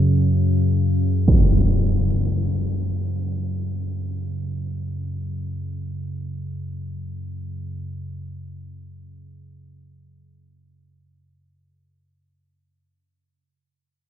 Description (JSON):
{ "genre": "dark ambient drone", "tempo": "free time", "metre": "none", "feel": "none", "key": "unclear", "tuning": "A4 = 440 Hz", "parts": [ { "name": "deep rumbling drone", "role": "drone", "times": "0.0-12.9 s", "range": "F#2 to C#3", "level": "-22 LUFS", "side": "equal", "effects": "built-in reverb" }, { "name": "impact", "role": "percussion", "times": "1.3-1.5 s", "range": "none", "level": "-20 LUFS", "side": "right 1 dB", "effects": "low-pass filter on sfx" } ], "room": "light reverb", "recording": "none", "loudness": "-21 LUFS", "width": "side -10 dB against mid", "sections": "0.0-12.7 A section", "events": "fade-out 0.5-12.7", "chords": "0.0 F#5" }